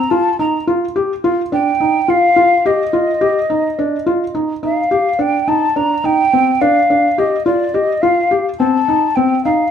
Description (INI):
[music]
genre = contemporary instrumental, contemporary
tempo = 212 BPM (eighths)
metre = 7/8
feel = straight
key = unclear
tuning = A4 = 439 Hz
[part]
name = mellow hollow jazz flute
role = melody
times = 0.0-9.7 s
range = D5 to Bb5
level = -15 LUFS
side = left 1 dB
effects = none
[part]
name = felt-muted upright piano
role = arpeggios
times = 0.1-9.6 s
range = C4 to G4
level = -16 LUFS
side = equal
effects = none
[sound]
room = moderate studio reverb, RT60 1.0 s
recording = none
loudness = -12 LUFS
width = side -8 dB against mid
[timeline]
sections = 0.0-4.6 A section; 4.6-9.7 B section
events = none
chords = 0.0 Cm7 (rootless); 0.7 Dmadd11; 4.6 Ebmaj7; 6.6 Dmadd11; 8.6 Cm6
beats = 0.11 0.39 | 0.67 0.96 1.24 1.52 1.80 2.09 2.37 | 2.65 2.94 3.22 3.50 3.79 4.07 4.35 | 4.64 4.92 5.20 5.49 5.77 6.05 6.34 | 6.62 6.90 7.19 7.47 7.75 8.04 8.32 | 8.61 8.89 9.17 9.46